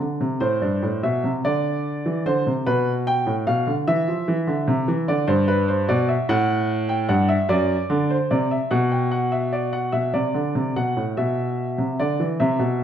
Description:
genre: classical, baroque-style two-part invention for grand piano.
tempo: 49 BPM (dotted quarters).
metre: 6/8.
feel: straight.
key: C major.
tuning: A4 = 440 Hz.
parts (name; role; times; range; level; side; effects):
warm grand piano; solo; 0.0-12.8 s; F#2 to G5; -19 LUFS; equal; none.
room: moderate recital hall reverb, RT60 1.3 s.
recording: minimal, uncompressed stereo recording.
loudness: -19 LUFS.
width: side -9 dB against mid.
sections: 0.2-9.9 A section; 9.9-12.8 B section.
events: none.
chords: 0.2 C; 1.4 Cadd9; 2.7 G7/B; 3.9 C/E; 5.1 G; 6.3 F#m7; 7.5 D7/F#; 8.7 G/B; 9.9 Bm; 11.2 Bmadd11.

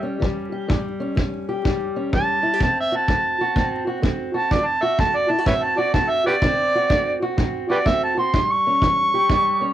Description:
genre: acoustic country blues, solo or duo.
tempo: 126 BPM.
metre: 4/4.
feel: swing 63% on 8ths.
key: unclear.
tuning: A4 = 440 Hz.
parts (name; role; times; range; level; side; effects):
overdriven harmonica; melody; 0.0-9.7 s; G4 to C#6; -19 LUFS; right 1 dB; cassette tape.
fingerpicked steel-string acoustic guitar; accompaniment; 0.0-9.7 s; E2 to G4; -25 LUFS; equal; cassette tape.
kick drum; drums; 0.2-9.4 s; none; -22 LUFS; equal; cassette tape.
room: moderate studio reverb, RT60 0.6 s.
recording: home recording on cassette, vinyl crackle.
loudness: -18 LUFS.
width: side -12 dB against mid.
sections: 0.0-9.7 A section.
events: harmonica solo 0.0-9.7.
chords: 0.0 A7; 2.6 D7; 8.3 A7.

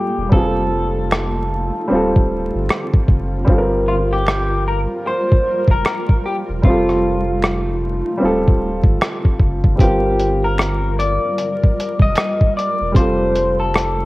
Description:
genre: lo-fi hip hop.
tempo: 76 BPM.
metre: 4/4.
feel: swing 61% on 16ths.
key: G minor.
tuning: A4 = 440 Hz.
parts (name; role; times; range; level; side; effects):
electric guitar through a small old amp; melody; 0.0-14.1 s; F4 to Eb5; -21 LUFS; left 1 dB; wide subtle chorus, low-pass filter.
dark upright piano; accompaniment; 0.0-14.1 s; G3 to Bb4; -21 LUFS; equal; cassette tape, low-pass filter.
granular cloud pad; sustained chords; 0.0-14.1 s; D3 to Bb4; -28 LUFS; equal; built-in reverb, low-pass filter.
warm sub bass; bass; 0.2-14.1 s; D1 to G1; -22 LUFS; equal; none.
lo-fi sampler-style drum kit; drums; 0.3-14.0 s; hi-hat, kick drum, rim click; -15 LUFS; equal; none.
finger snap; percussion; 1.1-14.0 s; none; -36 LUFS; right 3 dB; none.
room: light reverb, digital ambience.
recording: worn, warbling old tape, cassette tape, vinyl crackle, warbly pitch drift.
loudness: -14 LUFS.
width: side -19 dB against mid.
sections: 0.0-14.1 A section.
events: break 0.0-9.8.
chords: 0.3 F9; 1.9 Dm7; 3.5 Gm7; 6.6 F9; 8.2 Dm7; 9.8 Gm7; 13.0 F9.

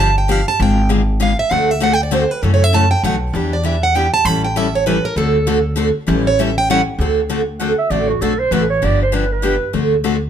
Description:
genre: acoustic string swing (jazz manouche).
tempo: 197 BPM.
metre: 3/4.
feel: swing 59% on 8ths.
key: D mixolydian.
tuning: A4 = 439 Hz.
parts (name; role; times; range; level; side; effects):
picked plugged-in steel-string acoustic guitar; melody; 0.0-6.8 s; A4 to B5; -18 LUFS; right 4 dB; none.
picked steel-string acoustic guitar; accompaniment; 0.0-10.2 s; B2 to A4; -20 LUFS; left 7 dB; none.
upright bass; bass; 0.0-10.3 s; G1 to F#2; -18 LUFS; equal; none.
picked steel-string acoustic guitar; accompaniment; 1.5-10.2 s; B2 to B4; -22 LUFS; right 5 dB; none.
mellow clarinet; second line; 7.6-9.7 s; F#4 to F#5; -18 LUFS; right 5 dB; none.
room: moderate studio reverb, RT60 0.8 s.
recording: minimal, uncompressed stereo recording.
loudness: -14 LUFS.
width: side -9 dB against mid.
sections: 0.0-7.0 A section; 7.0-10.3 A section.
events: steel-string acoustic guitar solo 0.0-7.0; clarinet solo 7.0-10.3.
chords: 0.0 G7; 0.6 G#dim7; 1.5 D7; 2.4 F#m7; 3.0 B7; 3.3 Em7; 4.3 A7; 5.2 D7; 6.1 A7; 7.0 D7; 8.8 G7; 9.7 D7.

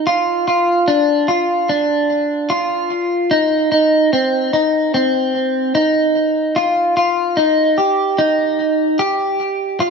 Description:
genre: dream pop.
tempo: 74 BPM.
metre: 4/4.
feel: straight.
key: unclear.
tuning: A4 = 439 Hz.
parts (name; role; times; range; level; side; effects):
clean electric guitar; solo; 0.0-9.9 s; C4 to G4; -14 LUFS; equal; lush chorus, digital delay.
room: wet scoring stage reverb, RT60 1.5 s.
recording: dark, warm production.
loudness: -14 LUFS.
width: side -5 dB against mid.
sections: 0.0-9.9 A section.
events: none.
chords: none.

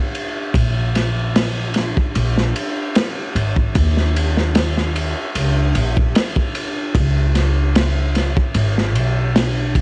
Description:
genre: trip hop.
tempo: 75 BPM.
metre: 4/4.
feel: swing 54% on 16ths.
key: unclear.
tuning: A4 = 440 Hz.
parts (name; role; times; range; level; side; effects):
crunchy breakbeat drum kit; drums; 0.1-9.8 s; kick drum, ride cymbal, snare drum; -18 LUFS; equal; vintage 12-bit sampler grit, cassette tape.
upright bass; bass; 0.5-9.8 s; G#1 to D#2; -17 LUFS; equal; none.
room: little or no reverb.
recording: home recording on cassette, vinyl crackle, nothing above 10.8 kHz.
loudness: -15 LUFS.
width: side -40 dB against mid.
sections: 0.0-9.8 A section.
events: none.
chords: none.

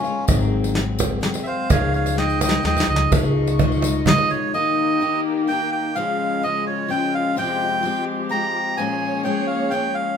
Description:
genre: acoustic folk duo or small band.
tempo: 127 BPM.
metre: 3/4.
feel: straight.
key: unclear.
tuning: A4 = 440 Hz.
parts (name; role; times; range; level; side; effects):
melodica; melody; 0.0-10.2 s; Db4 to Bb5; -22 LUFS; right 2 dB; none.
picked steel-string acoustic guitar; accompaniment; 0.0-10.2 s; F2 to Ab4; -24 LUFS; left 5 dB; none.
tambourine; percussion; 0.0-4.4 s; none; -34 LUFS; left 6 dB; none.
upright bass; bass; 0.3-4.0 s; Ab1 to Eb2; -23 LUFS; equal; none.
soft brush drum kit; drums; 0.3-4.2 s; hi-hat, kick drum, snare drum; -21 LUFS; equal; none.
cajon; percussion; 0.3-4.3 s; none; -24 LUFS; right 4 dB; none.
warm chamber string section; sustained chords; 3.1-10.2 s; Db3 to Db6; -29 LUFS; right 2 dB; none.
room: moderate large studio reverb, RT60 1.5 s.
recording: band playing live in one room.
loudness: -18 LUFS.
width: side -7 dB against mid.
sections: 0.0-3.1 A section; 3.1-4.5 B section; 4.5-10.2 C section.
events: melodica solo 0.0-3.1; drum fill 2.2-3.1.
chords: 0.3 Ab7; 1.7 Dbadd9; 4.5 Eb; 6.0 Db; 7.4 Fmadd9; 8.8 Bbm7.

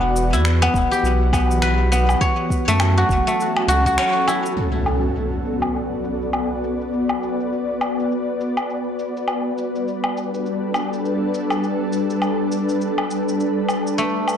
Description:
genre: organic downtempo.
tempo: 102 BPM.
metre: 4/4.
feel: swing 59% on 16ths.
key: B minor.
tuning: A4 = 441 Hz.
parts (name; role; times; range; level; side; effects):
ethereal airy pad; sustained chords; 0.0-14.4 s; E3 to D5; -22 LUFS; left 1 dB; ensemble chorus, built-in reverb, sidechain pumping.
guzheng; arpeggios; 0.0-6.9, 14.0-14.4 s; A3 to C#5; -20 LUFS; left 1 dB; vintage 12-bit sampler grit, digital delay.
warm sub bass; bass; 0.0-4.0 s; E1 to F#2; -18 LUFS; equal; sidechain pumping.
electronic cabasa, finger snaps and woodblock; drums; 0.2-14.4 s; none; -26 LUFS; left 1 dB; low-pass filter on perc, soft clipping on snare, low-pass filter on snare, low-pass filter on room.
electronic kick drum; drums; 0.7-4.0 s; none; -23 LUFS; equal; none.
impact; sound effects; 4.6-6.9 s; none; -26 LUFS; equal; none.
room: moderate lush hall reverb, RT60 1.6 s.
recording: blown-out, overdriven recording, overdrive.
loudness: -18 LUFS.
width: side -8 dB against mid.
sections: 0.0-4.6 A section; 4.6-14.4 B section.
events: band accent 4.0; impact 4.6-6.9; filter sweep on drum 4.6-14.4.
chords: 0.0 Em7; 2.2 F#m7; 4.6 Bm7; 9.3 Gmaj7.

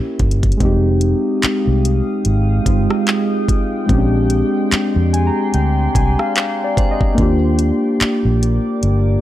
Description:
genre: contemporary R&B.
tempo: 73 BPM.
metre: 4/4.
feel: swing 58% on 16ths.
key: Eb major.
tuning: A4 = 435 Hz.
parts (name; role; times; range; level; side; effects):
muted felt-like synth keys; accompaniment; 0.0-9.2 s; Ab3 to Bb5; -18 LUFS; left 1 dB; chorus.
glassy synth bell; texture; 0.0-0.9, 6.8-7.6 s; Bb4 to E5; -36 LUFS; right 2 dB; chorus, tape echo.
vintage muted fingered electric bass; bass; 0.2-9.2 s; F1 to F2; -16 LUFS; equal; none.
smooth R&B drum kit; drums; 0.2-9.0 s; handclaps, hi-hat, kick drum, rim click; -18 LUFS; equal; none.
deep dark ambient pad; sustained chords; 1.2-9.2 s; Ab3 to Eb6; -25 LUFS; right 2 dB; chorus, built-in reverb.
room: little or no reverb.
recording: dry, gritty hardware recording.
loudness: -14 LUFS.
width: side -13 dB against mid.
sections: 0.0-9.2 A section.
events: synth keys fill 4.7-7.2.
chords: 0.0 C7b9 (rootless); 0.6 Fm9; 3.9 Bb13; 7.2 Ebmaj7.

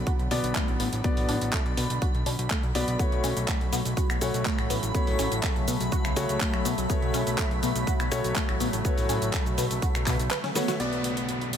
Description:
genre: progressive house.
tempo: 123 BPM.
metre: 4/4.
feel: straight.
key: unclear.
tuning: A4 = 441 Hz.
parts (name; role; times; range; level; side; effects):
evolving wavetable pad; sustained chords; 0.0-11.6 s; C#3 to B3; -34 LUFS; left 1 dB; chorus, built-in reverb, sidechain pumping.
warm grand piano; stabs; 0.0-11.6 s; A3 to D5; -32 LUFS; left 1 dB; sidechain pumping, low-pass filter, ping-pong delay.
fat analog bass; bass; 0.0-11.6 s; A1 to C#2; -31 LUFS; equal; sidechain pumping.
backwards swelling texture; texture; 0.0-11.6 s; B5; -38 LUFS; right 2 dB; built-in reverb, sidechain pumping.
tight sequenced synth; arpeggios; 0.1-10.8 s; A3 to B4; -34 LUFS; left 1 dB; chorus, phaser, sidechain pumping, ping-pong delay.
electronic kick drum; drums; 0.1-10.2 s; none; -28 LUFS; equal; none.
pop drum kit; drums; 0.1-11.6 s; cabasa, finger snaps, handclaps, hi-hat, snare drum; -32 LUFS; equal; sidechain pumping on hats, sidechain pumping on perc.
downlifter; sound effects; 10.8-11.6 s; none; -35 LUFS; right 1 dB; none.
room: digital ambience.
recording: none.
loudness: -24 LUFS.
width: side -8 dB against mid.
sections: 0.0-10.8 A section.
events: filter sweep on ambient pad 0.0-10.8; drum fill 10.3-10.8; band accent 10.7.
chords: 0.0 Bm; 3.0 F#m; 10.8 Bm.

